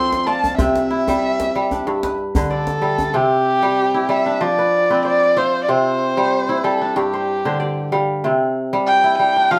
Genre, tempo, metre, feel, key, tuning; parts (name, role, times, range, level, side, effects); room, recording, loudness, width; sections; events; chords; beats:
west african traditional, West African string and xylophone music; 94 BPM; 4/4; swing 54% on 16ths; C major; A4 = 440 Hz
dark erhu; melody; 0.0-9.6 s; G4 to C6; -20 LUFS; equal
kora; arpeggios; 0.0-9.6 s; G2 to F5; -21 LUFS; equal
djembe; percussion; 0.1-3.1 s; -27 LUFS; equal
wet studio reverb, RT60 0.5 s; band playing live in one room; -18 LUFS; mono
0.0-3.1 A section; 3.1-9.6 B section
erhu solo 0.0-3.1
0.0 F; 0.6 C; 1.9 G; 3.1 C; 4.4 F5; 5.7 C; 7.0 G5; 8.2 C
| 0.59 1.23 1.86 2.50 | 3.14 3.77 4.41 5.05 | 5.69 6.33 6.96 7.60 | 8.24 8.87 9.51